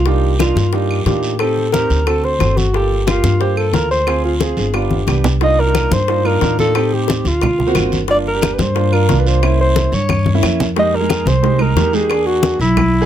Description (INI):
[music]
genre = Afro-Cuban jazz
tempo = 179 BPM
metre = 4/4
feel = straight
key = G minor, C minor from 5.4 s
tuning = A4 = 440 Hz
[part]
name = mellow alto saxophone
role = melody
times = 0.0-13.1 s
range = E4 to Eb5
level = -18 LUFS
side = equal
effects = none
[part]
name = upright bass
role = bass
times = 0.0-13.1 s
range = G1 to A2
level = -17 LUFS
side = equal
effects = none
[part]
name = clear upright piano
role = accompaniment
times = 0.1-13.1 s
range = Ab3 to C5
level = -20 LUFS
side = right 4 dB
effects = none
[part]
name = bongos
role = percussion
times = 0.1-13.1 s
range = none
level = -24 LUFS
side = left 11 dB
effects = none
[part]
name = congas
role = percussion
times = 0.1-13.1 s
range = none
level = -21 LUFS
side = left 3 dB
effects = none
[part]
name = guiro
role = percussion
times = 0.1-13.1 s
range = none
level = -31 LUFS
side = right 3 dB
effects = none
[part]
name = claves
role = percussion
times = 0.4-12.9 s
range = none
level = -28 LUFS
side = right 2 dB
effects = none
[sound]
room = little or no reverb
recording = close, detailed microphones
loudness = -13 LUFS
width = side -10 dB against mid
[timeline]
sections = 0.0-5.4 A section; 5.4-13.1 B section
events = drum fill 4.9-5.4, 10.1-10.8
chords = 0.1 Cm11; 1.4 Am7b5; 2.1 D7; 2.7 Gm9; 4.1 Dm7b5; 4.7 G7; 5.4 Cm11; 6.8 Am7b5; 7.4 D7alt; 8.1 Gm7; 9.4 C7b9; 10.8 Fm11; 12.1 E7#11